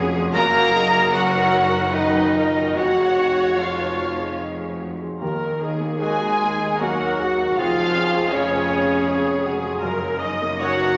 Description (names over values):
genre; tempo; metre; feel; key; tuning
cinematic; 72-80 BPM; 3/4; rubato; unclear; A4 = 440 Hz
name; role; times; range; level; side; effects
rich studio viola section; accompaniment; 0.0-11.0 s; Gb4 to Eb5; -30 LUFS; equal; none
warm baby grand piano; accompaniment; 0.0-11.0 s; Eb2 to Db5; -31 LUFS; equal; none
concert harp; arpeggios; 0.0-11.0 s; F2 to Db6; -34 LUFS; equal; none
rich symphonic cello section; bass; 0.0-11.0 s; Eb2 to Gb2; -36 LUFS; equal; none
rich symphonic double bass section; bass; 0.0-11.0 s; F1 to Eb2; -33 LUFS; equal; none
rich symphonic violin section; melody; 0.3-11.0 s; Db5 to Bb5; -28 LUFS; equal; none
clear clarinet; second line; 0.3-11.0 s; Db4 to Bb4; -29 LUFS; equal; none
rich symphonic violin section; second line; 0.3-11.0 s; Db4 to Bb4; -31 LUFS; equal; none
mellow French horn section; sustained chords; 0.3-11.0 s; Db3 to Gb4; -25 LUFS; equal; none
mellow flute section; second line; 0.4-11.0 s; Db5 to Bb5; -30 LUFS; equal; none
room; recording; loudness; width
wet scoring stage reverb, RT60 1.9 s; nothing above 7.7 kHz; -20 LUFS; mono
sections
0.0-11.0 A section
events
none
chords
0.3 Gb6; 2.8 Dbadd9/F; 5.2 Ebm; 7.6 Db/F; 9.8 Gb6